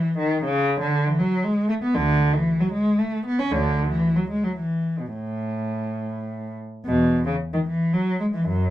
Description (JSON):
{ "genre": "classical, baroque-style suite movement for unaccompanied cello", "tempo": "101-121 BPM", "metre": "3/4", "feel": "rubato", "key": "A major", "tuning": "A4 = 440 Hz", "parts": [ { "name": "warm cello", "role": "solo", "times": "0.0-8.7 s", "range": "D2 to C#4", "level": "-21 LUFS", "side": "equal", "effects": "none" } ], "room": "light reverb", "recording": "dark, warm production", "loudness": "-20 LUFS", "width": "side -13 dB against mid", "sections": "0.0-6.9 A section; 6.9-8.7 A section", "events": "none", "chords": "none" }